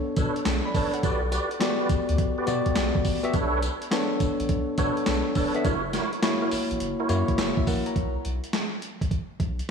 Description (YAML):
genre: R&B, new jack swing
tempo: 104 BPM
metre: 4/4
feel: swing 67% on 16ths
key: B minor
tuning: A4 = 440 Hz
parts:
  - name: bell-like tine electric piano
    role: accompaniment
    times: 0.0-8.1 s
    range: A#3 to B5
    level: -27 LUFS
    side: left 2 dB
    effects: slapback echo
  - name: round analog bass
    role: bass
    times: 0.0-9.6 s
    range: E1 to B2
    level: -30 LUFS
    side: equal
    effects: none
  - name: tonewheel organ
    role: stabs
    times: 0.2-7.1 s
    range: D4 to D5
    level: -31 LUFS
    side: right 3 dB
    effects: overdrive, chorus vibrato, slow rotary speaker, tape echo, slapback echo
  - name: boom bap sampler-style drum kit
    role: drums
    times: 0.2-9.7 s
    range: handclaps, hi-hat, kick drum, snare drum, tambourine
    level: -27 LUFS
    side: equal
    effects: none
room: moderate concert hall reverb, RT60 2.1 s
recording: big arena sound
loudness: -23 LUFS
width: side -6 dB against mid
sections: 0.0-8.0 A section; 8.0-9.7 B section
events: none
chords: 0.0 Bm9; 1.0 Gmaj7/B; 3.3 Bm9; 5.7 F#7; 8.0 Aadd9 (rootless)